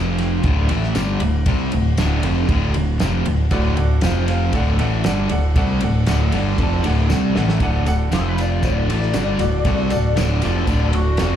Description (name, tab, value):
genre	classic rock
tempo	117 BPM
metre	4/4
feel	straight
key	unclear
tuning	A4 = 439 Hz
part	phased string machine	sustained chords	0.0-11.4 s	A3 to D5	-33 LUFS	right 1 dB	none
part	crunchy overdriven guitar	riff	0.0-11.4 s	D2 to C4	-23 LUFS	left 8 dB	none
part	crunchy overdriven guitar	riff	0.0-11.4 s	D2 to C4	-25 LUFS	right 9 dB	tremolo
part	growling fingered electric bass	bass	0.0-11.4 s	D1 to C2	-20 LUFS	equal	overdrive
part	damped 70s drum kit	drums	0.2-11.3 s	kick drum, ride cymbal, snare drum	-24 LUFS	equal	none
part	tambourine	percussion	1.0-11.3 s	none	-39 LUFS	right 2 dB	none
part	bright grand piano	accompaniment	3.5-11.4 s	F4 to A5	-27 LUFS	right 3 dB	slapback echo
part	lead guitar through a small cranked amp	melody	8.1-11.4 s	F#4 to D5	-26 LUFS	left 5 dB	wah, overdrive, slapback echo
room	small room ambience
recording	live gig heard through the venue's PA, club reverb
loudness	-16 LUFS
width	side -10 dB against mid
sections	0.0-7.6 A section; 7.6-11.4 B section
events	drum fill 7.1-7.6; lead electric guitar solo 7.6-11.4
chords	0.4 D; 4.0 F5; 4.5 D; 8.1 F5; 8.6 D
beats	0.45 0.96 | 1.47 1.98 2.50 3.01 | 3.52 4.03 4.54 5.05 | 5.57 6.08 6.59 7.10 | 7.61 8.13 8.64 9.15 | 9.67 10.18 10.69 11.21